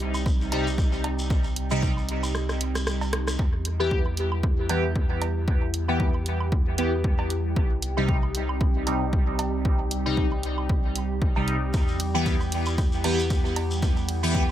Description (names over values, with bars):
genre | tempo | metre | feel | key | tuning
dub techno | 115 BPM | 4/4 | swing 56% on 16ths | E harmonic minor | A4 = 440 Hz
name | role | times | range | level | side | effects
warbly tape-like pad | sustained chords | 0.0-14.5 s | G3 to A4 | -34 LUFS | right 2 dB | chorus, built-in reverb, phaser, sidechain pumping
warm sub bass | bass | 0.0-14.5 s | C2 to E2 | -29 LUFS | equal | sidechain pumping
punchy analog drum machine | drums | 0.0-14.5 s | hi-hat, ride cymbal, rim click | -33 LUFS | right 1 dB | none
shekere | percussion | 0.1-3.4, 11.7-14.5 s | none | -38 LUFS | left 1 dB | none
woodblock and cowbell | percussion | 0.1-14.5 s | none | -39 LUFS | right 5 dB | sidechain pumping on perc, dub echo
electronic kick drum | drums | 0.3-14.5 s | none | -24 LUFS | equal | none
resonant sweep polysynth | stabs | 0.5-14.4 s | C3 to G4 | -28 LUFS | equal | chorus, phaser, sidechain pumping, dub echo
bubbling stepped-filter texture | texture | 4.1-14.5 s | G3 to G4 | -38 LUFS | left 1 dB | chorus, built-in reverb, sidechain pumping
room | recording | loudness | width
light reverb | none | -22 LUFS | side -11 dB against mid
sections
0.0-3.4 A section; 3.4-14.5 A section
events
kick drops out 2.3-3.4; drum fill 2.3-3.4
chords
0.0 Cm; 3.4 Em; 7.6 Cm; 11.7 Em